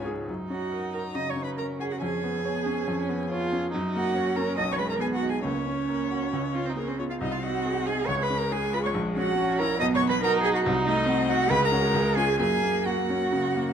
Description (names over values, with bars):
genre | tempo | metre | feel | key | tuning
quick classical-period movement for piano quartet | 138 BPM | 4/4 | rubato | F# major | A4 = 441 Hz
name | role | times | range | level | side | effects
rich violin | melody | 0.0-13.7 s | A#4 to D#6 | -33 LUFS | left 8 dB | none
warm cello | second line | 0.0-13.7 s | A#3 to D#5 | -28 LUFS | right 5 dB | none
bright baby grand piano | accompaniment | 0.0-13.7 s | A#1 to C#5 | -29 LUFS | left 2 dB | none
rich viola | accompaniment | 0.0-13.7 s | G#3 to E#4 | -31 LUFS | right 2 dB | none
room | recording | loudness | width
moderate recital hall reverb, RT60 1.3 s | close, detailed microphones, vinyl crackle | -24 LUFS | side -8 dB against mid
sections
0.3-13.7 A section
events
none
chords
0.3 F#; 2.0 C#7/E#; 3.7 F#; 4.6 G#m/B; 5.4 F#/C#; 6.3 C#; 7.2 G#7/B#; 8.1 C#; 9.0 F#7/A#; 9.8 B; 10.7 Cdim7; 11.5 F#/C#; 11.9 C#; 12.4 F#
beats
| 0.28 0.72 1.15 1.58 | 2.02 2.45 2.88 3.30 | 3.73 4.15 4.58 5.01 | 5.44 5.88 6.32 6.77 | 7.21 7.65 8.09 8.52 | 8.96 9.38 9.81 10.23 | 10.66 11.09 11.51 11.95 | 12.40 12.87 13.33